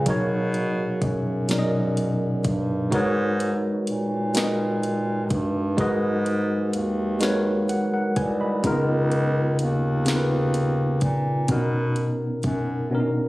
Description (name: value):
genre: slow six-eight R&B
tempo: 42 BPM (dotted quarters)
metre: 6/8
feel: straight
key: G# dorian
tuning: A4 = 440 Hz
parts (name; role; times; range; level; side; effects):
- tine electric piano; accompaniment; 0.0-13.3 s; B2 to B5; -22 LUFS; equal; overdrive, fast stereo tremolo
- warm bass clarinet; bass; 0.0-12.9 s; B#1 to B2; -27 LUFS; equal; none
- smooth R&B drum kit; drums; 0.1-12.7 s; hi-hat, kick drum, snare drum; -27 LUFS; equal; overdrive
room: little or no reverb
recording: recorded on a phone in the room, studio reverb, compression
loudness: -21 LUFS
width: side -18 dB against mid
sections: 0.0-13.3 A section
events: tine electric piano fill 7.2-8.6; silent gap 12.9-13.3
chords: 0.1 Bmaj9; 2.9 G#m11; 8.6 C#13; 11.5 Bmaj9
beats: | 0.06 1.49 | 2.92 4.35 | 5.78 7.20 | 8.63 10.06 | 11.49 12.92